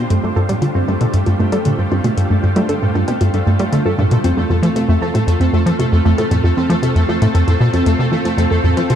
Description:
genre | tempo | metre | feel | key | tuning
ambient, sequencer-driven space music | 116 BPM | 4/4 | straight | unclear | A4 = 441 Hz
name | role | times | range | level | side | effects
string machine, full ensemble | sustained chords | 0.0-9.0 s | G3 to C5 | -22 LUFS | equal | ensemble chorus
plucky analog bass | riff | 0.0-9.0 s | F2 to G3 | -15 LUFS | equal | ping-pong delay
pulsing gated texture | texture | 0.0-9.0 s | A3 to C5 | -26 LUFS | right 2 dB | chorus, built-in reverb
warbly dusty pluck | arpeggios | 0.1-9.0 s | A2 to A4 | -20 LUFS | right 1 dB | chorus, auto-pan, ping-pong delay
electronic hi-hat and bongos | percussion | 0.1-9.0 s | none | -29 LUFS | left 2 dB | ping-pong delay
room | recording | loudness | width
moderate plate reverb, RT60 3.5 s | echo-heavy mix, cassette tape | -13 LUFS | side -9 dB against mid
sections
0.0-9.0 A section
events
none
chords
0.0 G7sus4; 4.2 F

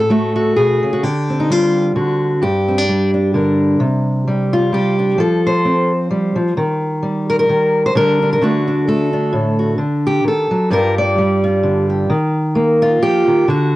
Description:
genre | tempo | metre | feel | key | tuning
folk, solo fingerstyle acoustic guitar | 130 BPM | 3/4 | swing 55% on 8ths | G minor | A4 = 437 Hz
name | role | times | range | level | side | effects
fingerpicked steel-string acoustic guitar | solo | 0.0-13.8 s | G2 to D5 | -13 LUFS | equal | cassette tape
room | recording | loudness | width
light reverb, small room reverb | home recording on cassette | -13 LUFS | side -17 dB against mid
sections
0.0-3.8 A section; 3.8-13.8 B section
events
none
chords
0.0 A; 1.0 D7sus4; 2.0 D7; 2.4 Gm; 3.8 Csus2; 5.2 F; 6.6 Eb; 8.0 Gm/D; 8.4 D; 10.7 G5; 12.1 Ebsus2

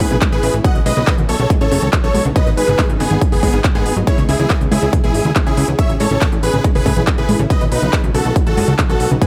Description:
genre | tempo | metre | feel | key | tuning
uplifting trance | 140 BPM | 4/4 | straight | unclear | A4 = 440 Hz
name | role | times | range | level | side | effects
big supersaw lead | melody | 0.0-9.3 s | B3 to F#5 | -23 LUFS | equal | sidechain pumping
plucky unison lead | second line | 0.0-9.3 s | G#4 to F#5 | -27 LUFS | equal | lush chorus, sidechain pumping
shimmering ambient pad | sustained chords | 0.0-9.3 s | C#3 to G#4 | -29 LUFS | equal | none
plucky analog bass | bass | 0.0-9.2 s | E1 to A2 | -22 LUFS | equal | sidechain pumping
big-room dance drum kit | drums | 0.0-9.3 s | handclaps, hi-hat | -26 LUFS | equal | none
electronic kick drum | drums | 0.0-9.3 s | none | -18 LUFS | equal | none
unison pluck | arpeggios | 0.1-9.3 s | C#3 to G#3 | -24 LUFS | equal | sidechain pumping
room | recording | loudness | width
digital ambience | none | -15 LUFS | mono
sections
0.0-9.3 A section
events
none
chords
0.0 A; 0.6 B; 2.4 G#m; 4.1 C#m; 5.8 A; 7.5 B

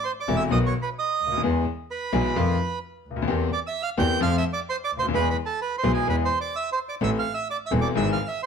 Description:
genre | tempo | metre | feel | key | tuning
tango | 129 BPM | 4/4 | rubato | unclear | A4 = 436 Hz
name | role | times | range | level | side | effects
bandoneon | melody | 0.0-8.5 s | G#4 to G6 | -27 LUFS | right 5 dB | plate reverb
clear concert grand piano | accompaniment | 0.3-8.1 s | E1 to A4 | -25 LUFS | left 4 dB | none
clear double bass | bass | 0.3-8.1 s | E1 to F2 | -27 LUFS | right 1 dB | none
room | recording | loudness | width
moderate studio reverb, RT60 0.8 s | none | -22 LUFS | side -6 dB against mid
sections
0.0-8.5 A section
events
none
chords
0.0 Am; 0.5 B; 1.4 E; 2.4 F7; 3.3 C7/E; 4.2 F; 5.1 E; 7.0 Am; 8.0 E/G#

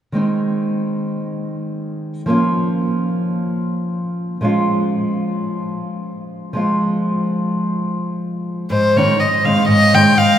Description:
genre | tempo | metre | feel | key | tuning
balkan folk | free time | none | none | Ab major | A4 = 440 Hz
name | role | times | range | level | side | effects
nylon-string guitar | accompaniment | 0.1-10.4 s | Ab2 to F4 | -17 LUFS | equal | none
rich violin | melody | 8.7-10.4 s | C5 to G5 | -13 LUFS | left 1 dB | none
room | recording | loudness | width
wet cathedral reverb, RT60 5.7 s | recorded in a church or concert hall | -16 LUFS | side -10 dB against mid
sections
0.1-8.7 A section; 8.7-10.4 B section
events
none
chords
0.1 Ab; 2.3 Bbm; 4.4 Db; 6.6 Fm; 8.7 Ab

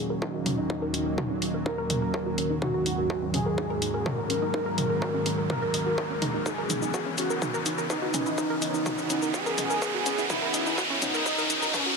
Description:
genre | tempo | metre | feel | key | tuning
melodic techno | 125 BPM | 4/4 | straight | Eb phrygian | A4 = 440 Hz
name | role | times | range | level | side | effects
fat analog lead | melody | 0.0-12.0 s | Db4 to Bb4 | -30 LUFS | equal | lush chorus, ping-pong delay
lush unison pad | sustained chords | 0.0-12.0 s | Eb2 to Cb4 | -33 LUFS | right 1 dB | chorus, sidechain pumping
wide unison pluck | arpeggios | 0.0-12.0 s | Db4 to Eb5 | -34 LUFS | right 1 dB | vintage 12-bit sampler grit, sidechain pumping, dub echo
riser | sound effects | 0.9-12.0 s | none | -32 LUFS | right 1 dB | none
deep dark ambient pad | texture | 0.0-12.0 s | Eb3 to Cb5 | -36 LUFS | right 1 dB | chorus, built-in reverb, sidechain pumping
electronic kick drum | drums | 0.2-11.8 s | none | -36 LUFS | equal | distortion, high-pass filter on kick, high-pass filter on room
techno drum kit | drums | 0.5-11.8 s | hi-hat, shaker, toms | -32 LUFS | equal | none
room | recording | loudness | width
moderate huge ambient reverb, RT60 6.3 s | high-pass filter | -25 LUFS | side -4 dB against mid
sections
0.0-12.0 A section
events
build-up 0.0-12.0; filter sweep on synth arpeggio sound 0.0-12.0; filter sweep on analog synth lead 0.0-12.0; filter sweep 0.0-12.0; riser 0.9-12.0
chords
0.0 Ebm; 6.5 Dbm7

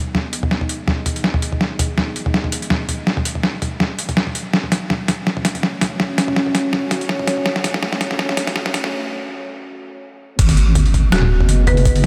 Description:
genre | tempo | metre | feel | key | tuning
half-time drum and bass | 164 BPM | 4/4 | swing 55% on 16ths, half-time | G# phrygian | A4 = 440 Hz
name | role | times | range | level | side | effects
deep dark ambient pad | sustained chords | 0.0-12.1 s | A3 to D#5 | -28 LUFS | equal | chorus, built-in reverb, vintage 12-bit sampler grit, sidechain pumping
boom bap sampler-style drum kit | drums | 0.1-12.1 s | crash cymbal, hi-hat, snare drum, toms | -21 LUFS | equal | overdrive
deep soft wobble bass | bass | 10.4-12.1 s | D#1 to G#1 | -16 LUFS | equal | chorus
electronic kick drum | drums | 10.4-11.9 s | none | -18 LUFS | equal | overdrive
marimba with hard mallets | melody | 11.1-11.9 s | F#4 to B4 | -24 LUFS | equal | vintage 12-bit sampler grit, delay
room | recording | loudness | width
moderate huge ambient reverb, RT60 4.1 s | dreamy mix soaked in reverb, high-pass filter | -19 LUFS | mono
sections
0.0-10.4 A section; 10.4-12.1 B section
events
build-up 0.0-10.4; drum fill 0.0-8.9; filter sweep 0.0-10.4; break 8.9-10.4; drop 10.4-12.1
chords
0.0 G#m; 4.5 F#m; 10.4 G#m

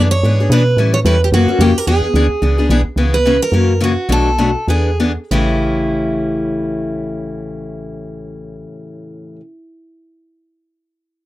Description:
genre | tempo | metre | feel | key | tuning
acoustic string swing (jazz manouche) | 186-220 BPM | 4/4 | swing 56% on 8ths | A mixolydian | A4 = 438 Hz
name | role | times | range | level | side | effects
picked steel-string acoustic guitar | accompaniment | 0.0-9.4 s | A2 to A4 | -18 LUFS | left 3 dB | none
woody FM bass | bass | 0.0-8.7 s | A1 to B2 | -16 LUFS | equal | none
picked steel-string acoustic guitar | melody | 0.1-9.4 s | E4 to C#5 | -19 LUFS | right 2 dB | none
room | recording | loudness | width
little or no reverb | dry, close 1970s-style studio recording | -12 LUFS | side -16 dB against mid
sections
0.0-3.0 A section; 3.0-5.3 B section; 5.3-7.9 C section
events
slowing down 3.0-5.3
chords
0.0 E7; 0.8 A7; 1.3 F#7; 1.9 E7; 3.0 C#m7; 3.5 F#7; 4.1 Bm7; 4.7 E7; 5.3 A7

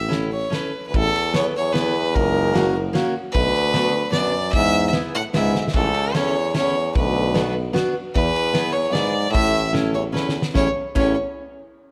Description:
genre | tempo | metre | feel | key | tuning
alpine folk, alpine dance band | 150 BPM | 3/4 | straight | A major | A4 = 440 Hz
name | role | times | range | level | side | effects
bright fiddle | melody | 0.0-11.2 s | A4 to F#5 | -25 LUFS | equal | none
warm tuba | bass | 0.0-11.2 s | F#1 to E2 | -27 LUFS | equal | none
picked steel-string acoustic guitar | accompaniment | 0.1-11.2 s | A#3 to A4 | -27 LUFS | equal | none
loose indie drum kit | drums | 0.1-11.1 s | crash cymbal, kick drum, ride cymbal, snare drum | -28 LUFS | equal | none
clear euphonium | second line | 0.9-11.2 s | C#2 to A2 | -27 LUFS | equal | none
room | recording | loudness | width
moderate recital hall reverb, RT60 1.6 s | none | -21 LUFS | mono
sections
0.9-10.6 A section; 10.6-11.8 B section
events
drum fill 5.5, 10.1-10.6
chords
0.0 A; 0.9 Asus2; 2.1 F#; 3.3 Bm; 4.5 E; 5.7 A; 7.0 Bm; 8.2 E; 9.3 A

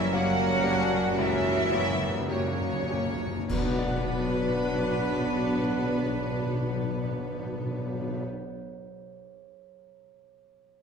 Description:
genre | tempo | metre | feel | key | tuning
classical, romantic movement for piano and orchestra | 48-62 BPM | 4/4 | rubato | B minor | A4 = 440 Hz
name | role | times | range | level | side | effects
clear concert grand piano | melody | 0.0-10.8 s | B1 to F#5 | -34 LUFS | left 3 dB | none
rich studio violin section | melody | 0.0-8.2 s | B4 to F#5 | -37 LUFS | left 4 dB | none
flute section | second line | 0.0-8.2 s | B4 to F#5 | -35 LUFS | right 2 dB | none
warm studio violin section | second line | 0.0-8.2 s | B3 to F#4 | -38 LUFS | left 2 dB | none
dark studio viola section | accompaniment | 0.0-8.2 s | A#3 to F#4 | -35 LUFS | right 2 dB | none
warm bassoon | accompaniment | 0.0-8.2 s | A#3 to D4 | -37 LUFS | right 1 dB | none
mellow French horn section | sustained chords | 0.0-8.2 s | F#3 to D4 | -36 LUFS | left 2 dB | none
mellow trumpet section | stabs | 0.0-8.2 s | A#4 to B4 | -37 LUFS | right 2 dB | none
warm studio cello section | bass | 0.0-8.2 s | C#3 to B3 | -34 LUFS | right 1 dB | none
warm studio double bass section | bass | 0.0-8.2 s | F#1 to B1 | -34 LUFS | left 1 dB | none
timpani | percussion | 0.0-8.2 s | F#2 to B2 | -35 LUFS | left 1 dB | none
clash cymbals and concert bass drum | percussion | 3.5-5.9 s | none | -37 LUFS | equal | none
room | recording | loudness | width
wet scoring stage reverb, RT60 1.8 s | minimal, uncompressed stereo recording | -25 LUFS | side -6 dB against mid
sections
0.0-3.5 A section; 3.5-8.3 B section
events
timpani fill 0.0-3.5; slowing down 0.0-3.5; band accent 3.5-4.7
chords
0.0 F#7b9; 3.5 Bm

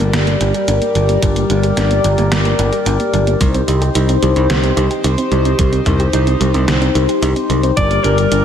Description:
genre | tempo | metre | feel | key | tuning
synthwave | 110 BPM | 4/4 | straight | G minor | A4 = 440 Hz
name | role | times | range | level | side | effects
chorused pulse-width pad | sustained chords | 0.0-8.4 s | G3 to D5 | -17 LUFS | left 2 dB | sidechain pumping
soft round pluck | arpeggios | 0.0-8.4 s | G3 to G4 | -23 LUFS | right 5 dB | chorus, analog delay
modern bright picked electric bass | bass | 0.0-8.4 s | G1 to C2 | -15 LUFS | equal | none
detuned 8-bit digital drum machine | drums | 0.0-8.4 s | hi-hat, snare drum, toms | -22 LUFS | equal | none
electronic kick drum | drums | 1.2-7.9 s | none | -17 LUFS | equal | none
breathy alto saxophone | melody | 7.8-8.4 s | Bb4 to D5 | -16 LUFS | left 2 dB | tape echo
room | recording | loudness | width
moderate plate reverb, RT60 1.8 s, digital ambience | dreamy mix soaked in reverb | -12 LUFS | side -9 dB against mid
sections
0.0-8.4 A section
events
none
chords
0.0 Gm; 3.4 Cm; 7.8 Gm

